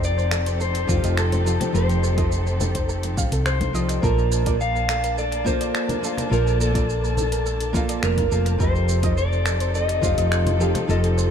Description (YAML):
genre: sunset chillout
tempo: 105 BPM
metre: 4/4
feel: straight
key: Bb major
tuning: A4 = 441 Hz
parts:
  - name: electric guitar at the edge of break-up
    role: melody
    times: 0.0-11.3 s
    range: G4 to F5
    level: -25 LUFS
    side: left 1 dB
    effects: analog delay, shimmer reverb
  - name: dark chamber string section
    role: sustained chords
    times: 0.0-11.3 s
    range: F3 to A5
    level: -32 LUFS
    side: left 1 dB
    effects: shimmer reverb
  - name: hollow-body short-scale fingered electric bass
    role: bass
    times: 0.0-11.3 s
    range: F1 to C2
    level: -22 LUFS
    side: equal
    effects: none
  - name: deep house drum kit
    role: drums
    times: 0.0-11.3 s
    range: finger snaps, hi-hat, shaker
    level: -30 LUFS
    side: right 1 dB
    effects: analog delay
  - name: soft round pluck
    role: arpeggios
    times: 0.2-11.3 s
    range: A4 to F5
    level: -33 LUFS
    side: right 2 dB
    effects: wide subtle chorus, analog delay, shimmer reverb
  - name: nylon-string guitar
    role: accompaniment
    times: 0.9-11.3 s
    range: F3 to A5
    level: -29 LUFS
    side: moving between left 3 dB and right 6 dB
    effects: auto-pan, vintage 12-bit sampler grit, analog delay, shimmer reverb
  - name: electronic kick drum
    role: drums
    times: 0.9-10.1 s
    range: none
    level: -26 LUFS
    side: equal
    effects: none
  - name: congas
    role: percussion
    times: 0.9-10.9 s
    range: none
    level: -33 LUFS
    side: left 3 dB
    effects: analog delay
room: light reverb, digital ambience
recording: echo-heavy mix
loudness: -19 LUFS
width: side -8 dB against mid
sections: 0.0-11.3 A section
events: none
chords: 0.0 F7; 4.0 Bbmaj7; 8.6 F7